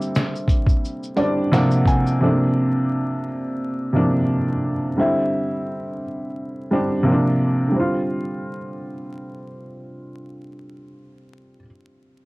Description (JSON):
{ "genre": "lo-fi hip hop", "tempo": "87 BPM", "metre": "4/4", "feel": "swing 57% on 16ths", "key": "G dorian", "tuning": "A4 = 440 Hz", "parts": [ { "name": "dark upright piano", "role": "accompaniment", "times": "0.0-12.3 s", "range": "C3 to Ab5", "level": "-20 LUFS", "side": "equal", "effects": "cassette tape, low-pass filter" }, { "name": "lo-fi sampler-style drum kit", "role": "drums", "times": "0.0-2.2 s", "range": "hi-hat, kick drum, shaker, snare drum", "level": "-19 LUFS", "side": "equal", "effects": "cassette tape" } ], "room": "moderate booth ambience, RT60 0.2 s", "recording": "home recording on cassette, vinyl crackle", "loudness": "-18 LUFS", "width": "side -22 dB against mid", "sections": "0.0-7.7 A section; 7.7-10.5 B section", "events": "none", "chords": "0.0 D9sus4; 1.5 C9sus4; 5.0 D9sus4; 7.0 C9sus4; 7.7 G5" }